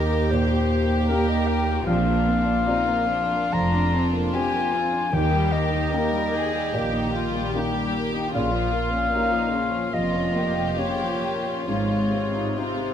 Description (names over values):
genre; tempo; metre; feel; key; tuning
cinematic, emotional film score for orchestra; 73 BPM; 4/4; uneven beats, rubato; Eb major; A4 = 440 Hz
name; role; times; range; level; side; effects
warm symphonic violin section; melody; 0.0-12.9 s; F4 to Bb4; -33 LUFS; left 3 dB; none
dark clarinet; second line; 0.0-12.9 s; Bb4 to Bb5; -27 LUFS; left 2 dB; none
warm symphonic violin section; second line; 0.0-12.9 s; Db4 to Bb4; -30 LUFS; left 2 dB; none
dark symphonic viola section; accompaniment; 0.0-12.9 s; C3 to G4; -30 LUFS; right 1 dB; none
felt-muted upright piano; accompaniment; 0.0-12.9 s; Bb1 to G5; -28 LUFS; left 2 dB; none
warm chamber cello section; bass; 0.0-12.4 s; Eb2 to Eb3; -29 LUFS; right 3 dB; none
warm symphonic double bass section; bass; 0.0-12.4 s; F1 to Eb2; -29 LUFS; equal; none
room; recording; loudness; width
moderate scoring stage reverb, RT60 1.6 s; close, detailed microphones, vinyl crackle; -21 LUFS; side -9 dB against mid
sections
0.0-12.9 A section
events
none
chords
0.0 Eb; 1.9 Bbadd9; 5.1 Eb; 8.3 Bbm; 11.7 Ab6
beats
0.32 1.09 | 1.88 2.67 3.53 4.34 | 5.13 5.93 6.74 7.54 | 8.34 9.14 9.94 10.79 | 11.68 12.58